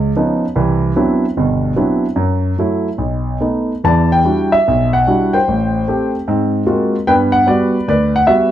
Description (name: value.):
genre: solo jazz.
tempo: 149 BPM.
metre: 4/4.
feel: swing 66% on 8ths, rubato.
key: G major.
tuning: A4 = 441 Hz.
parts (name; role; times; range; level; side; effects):
warm concert grand piano; solo; 0.0-8.5 s; G1 to A5; -12 LUFS; equal; none.
room: moderate studio reverb, RT60 0.8 s.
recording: dark, warm production, nothing above 10.8 kHz.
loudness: -13 LUFS.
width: side -11 dB against mid.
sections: 0.0-8.5 A section.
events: none.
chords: 0.0 C#9; 0.6 Cmaj9#11; 2.2 F#m7; 3.0 B7; 3.9 Em9; 5.5 Am7; 6.3 Ab13; 7.1 Gmaj7.